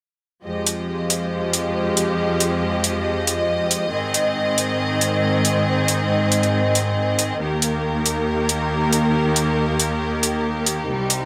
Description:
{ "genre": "heavy wobble dubstep", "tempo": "138 BPM", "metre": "4/4", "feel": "swing 53% on 16ths, half-time", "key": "F minor", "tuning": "A4 = 436 Hz", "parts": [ { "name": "clear symphonic string section", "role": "sustained chords", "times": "0.4-11.3 s", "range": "C2 to Eb5", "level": "-21 LUFS", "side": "equal", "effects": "none" }, { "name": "electronic hi-hat", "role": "drums", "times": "0.7-11.2 s", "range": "none", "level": "-22 LUFS", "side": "equal", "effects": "small room ambience" } ], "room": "moderate lush hall reverb, RT60 1.8 s, studio ambience", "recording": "none", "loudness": "-21 LUFS", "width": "mono", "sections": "0.4-11.3 A section", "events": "none", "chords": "0.4 Fm7; 3.9 Ab; 7.4 Eb" }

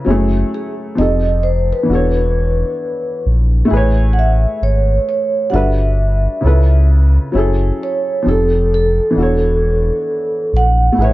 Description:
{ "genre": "lo-fi hip hop", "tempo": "66 BPM", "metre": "4/4", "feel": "swing 63% on 16ths", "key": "unclear", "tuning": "A4 = 436 Hz", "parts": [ { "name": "dark upright piano", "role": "accompaniment", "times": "0.0-11.1 s", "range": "C#3 to C#5", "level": "-19 LUFS", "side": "equal", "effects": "low-pass filter" }, { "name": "sub bass with octave", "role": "bass", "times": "0.1-11.1 s", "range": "E1 to C#2", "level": "-14 LUFS", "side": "equal", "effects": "none" }, { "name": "vibraphone with soft mallets", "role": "melody", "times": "0.5-11.1 s", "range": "G#4 to F#5", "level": "-18 LUFS", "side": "right 1 dB", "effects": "low-pass filter" } ], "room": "light reverb", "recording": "dark, warm production", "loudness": "-12 LUFS", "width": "side -17 dB against mid", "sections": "0.0-11.1 A section", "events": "none", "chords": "0.1 F#m9; 1.0 F9; 1.9 E13sus4; 3.7 Amaj9; 5.5 Gmaj9; 6.4 C#7alt; 7.3 F#m9; 8.3 F9; 9.2 E13sus4" }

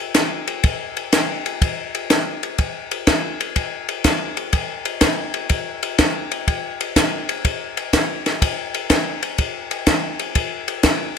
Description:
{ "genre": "jazz", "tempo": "124 BPM", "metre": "4/4", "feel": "swing 68% on 8ths", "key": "none", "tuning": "none", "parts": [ { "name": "compact cocktail drum kit", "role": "drums", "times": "0.1-11.0 s", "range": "hi-hat, kick drum, ride cymbal, snare drum", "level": "-18 LUFS", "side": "left 1 dB", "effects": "none" } ], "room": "moderate large studio reverb, RT60 1.2 s", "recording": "none", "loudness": "-18 LUFS", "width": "side -6 dB against mid", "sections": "0.0-2.6 A section; 2.6-11.2 B section", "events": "none", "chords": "none" }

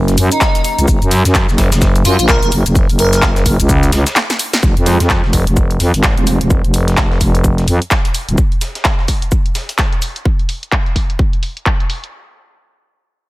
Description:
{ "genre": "bass house", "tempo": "128 BPM", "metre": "4/4", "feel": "swing 60% on 16ths", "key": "F phrygian", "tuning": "A4 = 440 Hz", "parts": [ { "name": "sweeping resonant pad", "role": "sustained chords", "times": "0.0-4.6 s", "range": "Db4 to Bb4", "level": "-25 LUFS", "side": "right 2 dB", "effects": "chorus, sidechain pumping" }, { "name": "growling FM bass", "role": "bass", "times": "0.0-8.4 s", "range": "Eb1 to Gb2", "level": "-13 LUFS", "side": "equal", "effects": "tube saturation, sidechain pumping" }, { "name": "big-room dance drum kit", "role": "drums", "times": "0.1-12.1 s", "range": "handclaps, hi-hat, shaker, snare drum", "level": "-18 LUFS", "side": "equal", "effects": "low-pass filter on hats, low-pass filter on perc, low-pass filter on snare" }, { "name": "breakbeat sampler-style drum kit", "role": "drums", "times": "0.1-10.2 s", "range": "hi-hat, shaker, snare drum", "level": "-25 LUFS", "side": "left 1 dB", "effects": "sidechain pumping on perc, high-pass filter on perc, high-pass filter on snare, sidechain pumping on hats, high-pass filter on hats, high-pass filter on room" }, { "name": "airy dreamy lead", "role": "melody", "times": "0.3-3.2 s", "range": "Eb4 to Bb4", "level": "-18 LUFS", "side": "equal", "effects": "chorus, tape echo" }, { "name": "electronic kick drum", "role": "drums", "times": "0.4-11.8 s", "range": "none", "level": "-14 LUFS", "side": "equal", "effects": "none" }, { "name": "orchestra-hit-like synth stab", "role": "stabs", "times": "4.9-6.7 s", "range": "Ab3 to C5", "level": "-22 LUFS", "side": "right 5 dB", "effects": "built-in reverb, sidechain pumping, tape echo" } ], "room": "digital ambience", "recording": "none", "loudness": "-11 LUFS", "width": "side -19 dB against mid", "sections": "0.0-4.6 A section; 4.6-12.1 B section", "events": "drop 0.0-4.6; break 4.2-4.6; drum fill 4.2-4.6; filter sweep on synth stab 4.6-6.5", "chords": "0.0 Gb; 4.6 Fm" }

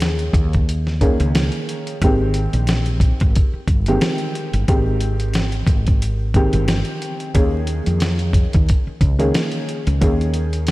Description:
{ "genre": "hip hop, boom-bap hip-hop", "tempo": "90 BPM", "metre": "4/4", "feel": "swing 55% on 16ths", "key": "Ab major", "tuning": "A4 = 440 Hz", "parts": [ { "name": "dark upright piano", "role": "accompaniment", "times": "0.0-10.7 s", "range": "Eb3 to Ab4", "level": "-22 LUFS", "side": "equal", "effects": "high-pass filter, low-pass filter" }, { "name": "woody fretless electric bass", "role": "bass", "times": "0.0-10.7 s", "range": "G1 to F2", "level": "-19 LUFS", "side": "equal", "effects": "none" }, { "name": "dusty soul sampler-style drum kit", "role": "drums", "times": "0.0-10.7 s", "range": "hi-hat, kick drum, snare drum", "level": "-18 LUFS", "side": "equal", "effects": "none" } ], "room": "light reverb", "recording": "vinyl crackle", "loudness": "-16 LUFS", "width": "side -19 dB against mid", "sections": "0.0-10.7 A section", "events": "none", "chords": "0.0 Eb7sus4; 2.0 Abmaj7; 7.3 Eb7sus4" }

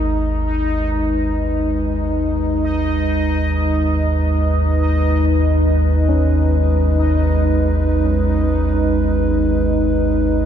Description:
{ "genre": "dark ambient drone", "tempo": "free time", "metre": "none", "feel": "none", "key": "G# minor", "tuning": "A4 = 440 Hz", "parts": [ { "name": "dark analog pad", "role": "sustained chords", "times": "0.0-10.5 s", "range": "G#3 to B4", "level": "-20 LUFS", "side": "equal", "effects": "chorus" }, { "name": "deep rumbling drone", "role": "drone", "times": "0.0-10.5 s", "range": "G#1 to D#2", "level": "-17 LUFS", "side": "equal", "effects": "built-in reverb, wide subtle chorus" }, { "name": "bubbling stepped-filter texture", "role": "texture", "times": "0.0-10.5 s", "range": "D#4 to D#5", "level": "-25 LUFS", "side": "right 1 dB", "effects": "chorus, built-in reverb" }, { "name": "dark baby grand piano", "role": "arpeggios", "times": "6.1-10.5 s", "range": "C#4", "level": "-30 LUFS", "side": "left 6 dB", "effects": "none" } ], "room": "moderate huge ambient reverb, RT60 7.2 s", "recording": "dark, warm production", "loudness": "-15 LUFS", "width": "side -9 dB against mid", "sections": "0.0-10.5 A section", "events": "filter sweep on synth drone 0.0-10.5", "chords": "0.0 G#m" }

